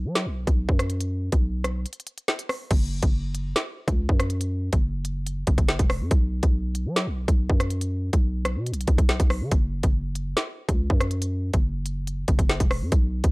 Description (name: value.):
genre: hip hop, drill.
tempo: 141 BPM.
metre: 4/4.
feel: half-time.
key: unclear.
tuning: A4 = 440 Hz.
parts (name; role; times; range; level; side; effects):
growling 808-style bass; bass; 0.0-13.3 s; E1 to F#3; -26 LUFS; equal; none.
drill drum kit; drums; 0.2-13.3 s; crash cymbal, hi-hat, kick drum, rim click, snare drum; -22 LUFS; equal; none.
room: digital ambience.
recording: dry, gritty hardware recording, cassette tape.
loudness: -22 LUFS.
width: side -26 dB against mid.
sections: 0.0-2.7 A section; 2.7-13.3 B section.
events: break 1.9-2.7.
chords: none.